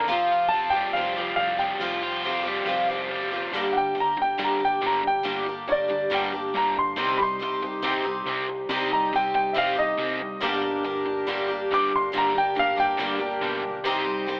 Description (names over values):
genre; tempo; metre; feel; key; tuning
folk rock and heartland rock; 139 BPM; 4/4; straight; G minor; A4 = 440 Hz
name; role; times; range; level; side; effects
picked twelve-string acoustic guitar; accompaniment; 0.0-14.4 s; G2 to G4; -27 LUFS; equal; none
overdriven electric guitar; riff; 0.0-14.4 s; G2 to F4; -30 LUFS; equal; none
hollow-body short-scale fingered electric bass; bass; 0.0-14.4 s; F1 to G2; -43 LUFS; equal; none
warm grand piano; melody; 0.5-13.6 s; C#5 to D6; -24 LUFS; equal; none
accordion; sustained chords; 10.4-14.4 s; Bb3 to C5; -33 LUFS; equal; none
room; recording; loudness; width
moderate plate reverb, RT60 2.8 s; telephone sound; -22 LUFS; side -33 dB against mid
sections
0.0-3.5 A section; 3.5-14.4 B section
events
grand piano solo 3.5-14.4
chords
0.1 Fsus2; 3.5 Gm; 7.0 Cm; 10.4 Gm; 13.8 Cm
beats
| 0.08 0.51 0.94 1.37 | 1.80 2.24 2.67 3.10 | 3.53 3.96 4.39 4.82 | 5.25 5.68 6.12 6.55 | 6.98 7.41 7.84 8.27 | 8.70 9.13 9.56 9.99 | 10.41 10.84 11.27 11.70 | 12.13 12.56 12.99 13.42 | 13.84 14.27